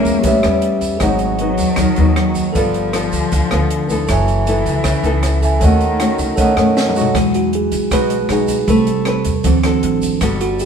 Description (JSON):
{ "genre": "bossa nova", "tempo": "156 BPM", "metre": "4/4", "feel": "straight", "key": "unclear", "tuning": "A4 = 440 Hz", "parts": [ { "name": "dark cello", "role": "second line", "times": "0.0-6.9 s", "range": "D#3 to A#3", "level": "-21 LUFS", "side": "left 2 dB", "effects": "none" }, { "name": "nylon-string guitar", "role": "accompaniment", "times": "0.0-10.7 s", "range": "G#2 to B4", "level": "-19 LUFS", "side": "left 3 dB", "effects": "none" }, { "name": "tine electric piano", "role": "accompaniment", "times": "0.0-10.7 s", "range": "C3 to G#5", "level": "-18 LUFS", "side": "right 4 dB", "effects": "none" }, { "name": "compact cocktail drum kit", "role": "drums", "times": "0.0-10.7 s", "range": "hi-hat, kick drum, rim click, snare drum, toms", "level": "-23 LUFS", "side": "equal", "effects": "none" }, { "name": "upright bass", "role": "bass", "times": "0.1-10.7 s", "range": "F#1 to F#2", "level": "-20 LUFS", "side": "equal", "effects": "none" }, { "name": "tube shaker", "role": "percussion", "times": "0.1-10.7 s", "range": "none", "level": "-32 LUFS", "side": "right 3 dB", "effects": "none" } ], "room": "wet stone room reverb, RT60 1.1 s", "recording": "band playing live in one room", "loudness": "-13 LUFS", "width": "side -7 dB against mid", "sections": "0.0-7.1 A section; 7.1-10.7 B section", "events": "drum fill 6.8-7.1; tine electric piano solo 7.1-10.7", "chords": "0.2 A9; 1.0 G#m7; 2.5 G9; 4.1 F#m11; 5.6 D#m7b5; 6.4 B9; 7.1 Emaj9; 8.7 Am9; 9.4 D7", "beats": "0.25 0.63 | 1.01 1.40 1.78 2.17 | 2.55 2.93 3.32 3.70 | 4.08 4.47 4.85 5.23 | 5.62 6.00 6.38 6.76 | 7.15 7.53 7.91 8.30 | 8.68 9.06 9.45 9.83 | 10.21 10.60" }